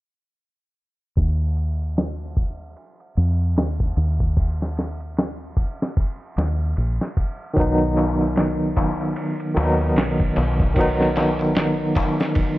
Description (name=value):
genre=trip hop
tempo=75 BPM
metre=4/4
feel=swing 58% on 16ths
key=unclear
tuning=A4 = 435 Hz
part: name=deep dub fingered electric bass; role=bass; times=1.2-11.9 s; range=Bb1 to F2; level=-23 LUFS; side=equal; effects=none
part: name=dusty soul sampler-style drum kit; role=drums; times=1.2-12.6 s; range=kick drum, ride cymbal, snare drum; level=-23 LUFS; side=equal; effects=low-pass filter on cymbals, small room ambience, low-pass filter on kick, low-pass filter on snare
part: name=barky tine electric piano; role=accompaniment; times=7.5-12.6 s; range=D#3 to D#4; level=-20 LUFS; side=equal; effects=tremolo, tape echo
part: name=darbuka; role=percussion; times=7.6-12.6 s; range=none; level=-30 LUFS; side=left 3 dB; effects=none
room=digital ambience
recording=low-pass filter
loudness=-19 LUFS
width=side -17 dB against mid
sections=1.2-12.6 A section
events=filter sweep 1.2-12.6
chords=1.2 N.C.; 7.6 B